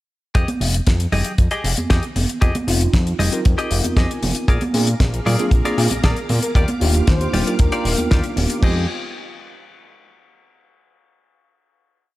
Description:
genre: nu-disco, nu disco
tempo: 116 BPM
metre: 4/4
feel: straight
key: F dorian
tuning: A4 = 440 Hz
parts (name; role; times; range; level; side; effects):
- direct-recorded clean electric guitar; riff; 0.3-8.9 s; F4 to Ab5; -27 LUFS; left 2 dB; lush chorus, analog delay
- fat analog bass; bass; 0.3-8.9 s; Eb1 to Bb2; -20 LUFS; equal; sidechain pumping
- damped 70s drum kit; drums; 0.3-8.7 s; crash cymbal, hi-hat, snare drum; -25 LUFS; left 2 dB; studio reverb
- kick drum; drums; 0.4-8.7 s; none; -16 LUFS; equal; studio reverb
- congas; percussion; 0.5-8.5 s; none; -27 LUFS; right 2 dB; none
- mellow tine electric piano; accompaniment; 2.7-8.8 s; Ab3 to Bb4; -25 LUFS; equal; medium stereo tremolo
- string machine, full ensemble; sustained chords; 4.5-8.9 s; F4 to D6; -32 LUFS; equal; ensemble chorus, sidechain pumping
- soft octave-layered synth lead; melody; 6.0-8.0 s; Bb4 to C5; -29 LUFS; left 1 dB; chorus, tape echo
room: small room reverb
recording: dry, gritty hardware recording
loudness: -16 LUFS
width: side -17 dB against mid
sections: 0.3-8.6 groove; 8.6-10.7 final chord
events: clean electric guitar fill 3.7-4.5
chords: 0.3 Fm9; 4.5 Bb7; 6.6 Ebmaj9; 8.6 Fm9

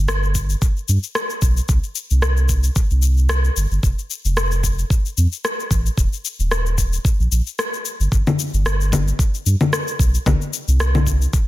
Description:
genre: sunset chillout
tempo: 112 BPM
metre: 4/4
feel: swing 55% on 16ths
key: unclear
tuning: A4 = 437 Hz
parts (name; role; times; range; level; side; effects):
- warm sub bass; bass; 0.0-11.3 s; Eb1 to G2; -17 LUFS; equal; none
- electronic rim click, shaker and congas; drums; 0.1-11.5 s; none; -22 LUFS; left 2 dB; soft clipping on snare
- electronic kick drum; drums; 0.3-11.5 s; none; -19 LUFS; equal; none
room: little or no reverb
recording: dense, heavily limited modern master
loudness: -16 LUFS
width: side -16 dB against mid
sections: 0.0-11.5 A section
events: none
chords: none

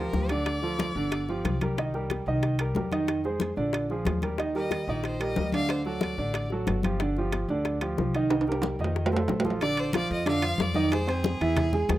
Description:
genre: Afro-Cuban jazz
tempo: 184 BPM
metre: 4/4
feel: straight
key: G minor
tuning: A4 = 437 Hz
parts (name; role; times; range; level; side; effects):
- bright violin; melody; 0.0-1.6, 4.6-6.5, 9.6-12.0 s; Ab4 to F5; -34 LUFS; left 2 dB; slapback echo
- clear concert grand piano; accompaniment; 0.0-12.0 s; D3 to C6; -28 LUFS; right 2 dB; none
- upright bass; bass; 0.0-12.0 s; G1 to F2; -31 LUFS; left 1 dB; none
- bongos; percussion; 0.1-12.0 s; none; -34 LUFS; left 8 dB; none
- congas; percussion; 0.1-12.0 s; none; -32 LUFS; left 3 dB; none
- timbales; percussion; 0.3-12.0 s; none; -32 LUFS; right 3 dB; none
room: little or no reverb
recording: rough home demo mix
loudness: -25 LUFS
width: side -14 dB against mid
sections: 0.0-9.6 A section; 9.6-12.0 B section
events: drum fill 8.3-9.6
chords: 0.5 Dm; 1.1 G5; 1.8 Cm7; 3.1 Fm7; 3.7 Bb7; 4.4 Eb; 5.7 D; 7.0 G7sus4; 8.3 Cm7; 9.0 F7; 9.6 Bb; 10.9 Fm

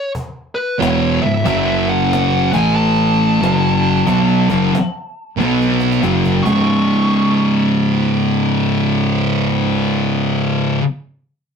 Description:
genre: stoner and doom metal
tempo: 92 BPM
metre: 4/4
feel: swing 66% on 8ths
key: C# minor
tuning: A4 = 440 Hz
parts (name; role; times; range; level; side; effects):
- fuzz lead guitar; melody; 0.0-10.0 s; B4 to C#6; -20 LUFS; left 1 dB; distortion
- cajon; drums; 0.1-6.6 s; none; -28 LUFS; equal; none
- thick fuzz guitar; riff; 0.8-10.8 s; C#2 to B3; -17 LUFS; left 6 dB; distortion
- thick fuzz guitar; riff; 0.8-10.8 s; C#2 to B3; -16 LUFS; right 5 dB; distortion
- growling fingered electric bass; bass; 0.8-10.8 s; C#1 to B1; -26 LUFS; left 1 dB; overdrive, tube saturation
room: moderate studio reverb, RT60 0.5 s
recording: rough rehearsal-room recording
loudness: -13 LUFS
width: side -6 dB against mid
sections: 0.0-6.7 A section; 6.7-9.3 B section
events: drum fill 5.4-6.7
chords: 0.0 C#m; 1.5 F#5; 2.4 A5; 3.4 F#5; 5.4 B5; 6.0 F#5; 6.4 C#5

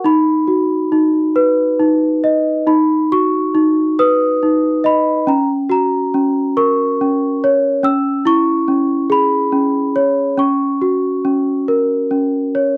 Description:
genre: children's music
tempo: 46 BPM (dotted quarters)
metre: 6/8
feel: rubato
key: B major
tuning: A4 = 440 Hz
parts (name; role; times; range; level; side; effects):
- celesta; solo; 0.0-12.8 s; C#4 to E6; -15 LUFS; equal; none
room: light reverb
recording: dry, close 1970s-style studio recording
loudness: -15 LUFS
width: mono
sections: 0.0-2.7 A section; 2.7-12.8 B section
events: none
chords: 0.0 B; 5.3 F#; 7.8 C#m; 10.4 F#

